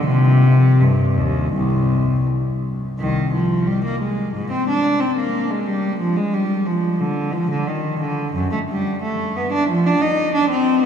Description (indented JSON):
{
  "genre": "classical, baroque-style suite movement for unaccompanied cello",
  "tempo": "81-92 BPM",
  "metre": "4/4",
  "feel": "rubato",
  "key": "C minor",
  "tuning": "A4 = 437 Hz",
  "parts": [
    { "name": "rich cello", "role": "solo", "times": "0.0-10.9 s", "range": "C2 to Eb4", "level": "-16 LUFS", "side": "equal", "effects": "none" }
  ],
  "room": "wet cathedral reverb, RT60 6.0 s",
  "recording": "in a vast, echoing space, small room ambience",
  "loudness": "-17 LUFS",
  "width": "side -8 dB against mid",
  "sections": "0.0-3.0 A section; 3.0-10.9 A section",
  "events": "none",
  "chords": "none",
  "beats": "| 0.07 0.80 1.54 2.27 | 2.99 3.67 4.34 5.01 | 5.68 6.34 7.00 7.66 | 8.35 9.03 9.70 10.35"
}